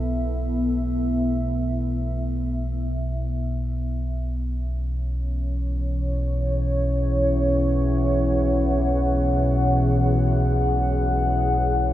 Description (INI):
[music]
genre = dark ambient drone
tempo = free time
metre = none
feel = none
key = unclear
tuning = A4 = 441 Hz
[part]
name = deep dark ambient pad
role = sustained chords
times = 0.0-11.9 s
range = E3 to F#5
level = -24 LUFS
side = equal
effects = chorus, built-in reverb
[part]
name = deep rumbling drone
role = drone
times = 0.0-11.9 s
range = B1 to B2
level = -23 LUFS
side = equal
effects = built-in reverb
[sound]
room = wet huge ambient reverb, RT60 7.9 s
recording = in a vast, echoing space, small room ambience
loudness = -21 LUFS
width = side -13 dB against mid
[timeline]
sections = 0.0-11.9 A section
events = fade-in on ambient pad 0.0-11.9; filter sweep on synth drone 0.0-11.9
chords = 0.0 N.C.; 3.9 Eadd9